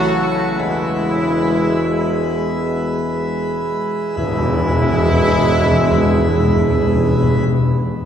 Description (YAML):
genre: classical, ceremonial fanfare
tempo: 46-56 BPM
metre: 3/4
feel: straight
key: E major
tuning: A4 = 440 Hz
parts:
  - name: mellow trumpet section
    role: melody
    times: 0.0-7.4 s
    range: E4 to F#4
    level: -23 LUFS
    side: equal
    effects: none
  - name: mellow French horn section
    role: sustained chords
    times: 0.0-7.4 s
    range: E3 to G#3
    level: -26 LUFS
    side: left 2 dB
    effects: none
  - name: pipe organ, plenum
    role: sustained chords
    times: 0.0-7.4 s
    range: E3 to C#5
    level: -20 LUFS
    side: right 2 dB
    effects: none
  - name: warm trombone section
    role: sustained chords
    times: 0.0-7.4 s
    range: B2 to A3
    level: -26 LUFS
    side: right 1 dB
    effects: none
  - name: mellow tuba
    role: bass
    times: 0.0-7.4 s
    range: E1 to A1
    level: -22 LUFS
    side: equal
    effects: none
  - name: tam-tam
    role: percussion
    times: 4.2-7.4 s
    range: none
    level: -29 LUFS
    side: left 2 dB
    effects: none
  - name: timpani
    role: percussion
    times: 4.2-7.4 s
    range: E2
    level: -17 LUFS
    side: left 2 dB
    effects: none
room: wet cathedral reverb, RT60 4.9 s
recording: recorded in a church or concert hall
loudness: -14 LUFS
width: side -8 dB against mid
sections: 0.0-4.2 A section; 4.2-8.0 B section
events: slowing down 0.0-4.2; band accent 4.2-5.4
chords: 0.0 A; 0.6 E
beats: | 0.59 1.71 2.89 | 4.17 5.44 6.71